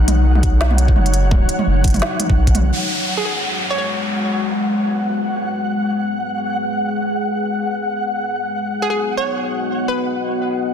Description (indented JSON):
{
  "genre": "half-time drum and bass",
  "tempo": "170 BPM",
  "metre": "4/4",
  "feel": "swing 56% on 16ths, half-time",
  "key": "G# minor",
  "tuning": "A4 = 442 Hz",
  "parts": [
    { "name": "deep dark ambient pad", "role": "sustained chords", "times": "0.0-10.7 s", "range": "F#3 to D#5", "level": "-22 LUFS", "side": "left 2 dB", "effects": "chorus, built-in reverb, vintage 12-bit sampler grit, sidechain pumping" },
    { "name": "saturated sub bass", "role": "bass", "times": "0.0-2.7 s", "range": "F#1 to B1", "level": "-15 LUFS", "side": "equal", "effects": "none" },
    { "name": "flickering grainy texture", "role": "texture", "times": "0.0-10.7 s", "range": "F#5", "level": "-24 LUFS", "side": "left 1 dB", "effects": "built-in reverb" },
    { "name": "organic electronic drum kit", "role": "drums", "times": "0.1-2.6 s", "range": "hi-hat, snare drum, toms", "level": "-22 LUFS", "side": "right 2 dB", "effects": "overdrive" },
    { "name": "electronic kick drum", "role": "drums", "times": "0.4-2.5 s", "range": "none", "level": "-16 LUFS", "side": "equal", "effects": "overdrive" },
    { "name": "downlifter", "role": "sound effects", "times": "2.7-5.5 s", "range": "none", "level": "-24 LUFS", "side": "equal", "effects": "none" },
    { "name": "hollow square pluck", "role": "melody", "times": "3.2-3.8, 8.8-10.4 s", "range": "G#4 to C#5", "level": "-24 LUFS", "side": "equal", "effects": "chorus, dub echo" }
  ],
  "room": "light reverb",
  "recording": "dense, heavily limited modern master",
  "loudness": "-16 LUFS",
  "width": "side -8 dB against mid",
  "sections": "0.0-2.7 A section; 2.7-10.7 B section",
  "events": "drop 0.0-2.7",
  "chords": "0.0 B; 2.7 G#m7; 8.4 B",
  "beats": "0.26 0.61 0.96 | 1.31 1.67 2.02 2.37 | 2.73 3.08 3.43 3.78 | 4.14 4.49 4.84 5.20 | 5.55 5.90 6.25 6.61 | 6.96 7.31 7.67 8.02 | 8.37 8.72 9.08 9.43 | 9.78 10.14 10.49"
}